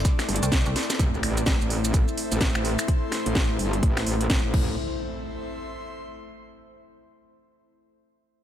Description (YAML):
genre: bass house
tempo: 127 BPM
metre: 4/4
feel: swing 60% on 16ths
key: A minor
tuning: A4 = 440 Hz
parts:
  - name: deep dark ambient pad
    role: sustained chords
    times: 0.0-4.8 s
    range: A3 to D5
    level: -33 LUFS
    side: left 2 dB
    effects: chorus, built-in reverb, sidechain pumping
  - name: metallic FM bass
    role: bass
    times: 0.0-0.7 s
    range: C2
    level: -26 LUFS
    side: equal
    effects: overdrive, sidechain pumping
  - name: breakbeat sampler-style drum kit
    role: drums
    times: 0.0-2.9 s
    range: hi-hat, snare drum, tambourine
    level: -38 LUFS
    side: right 1 dB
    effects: none
  - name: electronic kick drum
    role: drums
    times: 0.0-4.7 s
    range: none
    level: -23 LUFS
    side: equal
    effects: none
  - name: maracas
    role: percussion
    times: 0.0-2.9 s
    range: none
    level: -34 LUFS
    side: right 4 dB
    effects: none
  - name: airy breathy pad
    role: texture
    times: 0.0-6.6 s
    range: C4 to C6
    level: -36 LUFS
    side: equal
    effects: chorus, sidechain pumping
  - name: house drum kit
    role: drums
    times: 0.1-4.7 s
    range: crash cymbal, finger snaps, hi-hat, snare drum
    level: -29 LUFS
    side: equal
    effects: none
  - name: metallic wobble bass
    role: bass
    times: 0.3-4.8 s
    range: G1 to A1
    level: -26 LUFS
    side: equal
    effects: distortion, chorus, overdrive, sidechain pumping
  - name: impact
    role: sound effects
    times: 1.0-6.4 s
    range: none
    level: -36 LUFS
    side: equal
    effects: none
room: little or no reverb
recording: none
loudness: -22 LUFS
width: side -11 dB against mid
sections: 1.0-4.8 A section; 4.8-6.7 B section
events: drum fill 0.8; fade-out on analog synth pad 1.0-4.8; impact 1.0-2.9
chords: 0.0 Am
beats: 0.05 0.52 | 0.99 1.47 1.94 2.41 | 2.88 3.36 3.83 4.30 | 4.77 5.25 5.72 6.19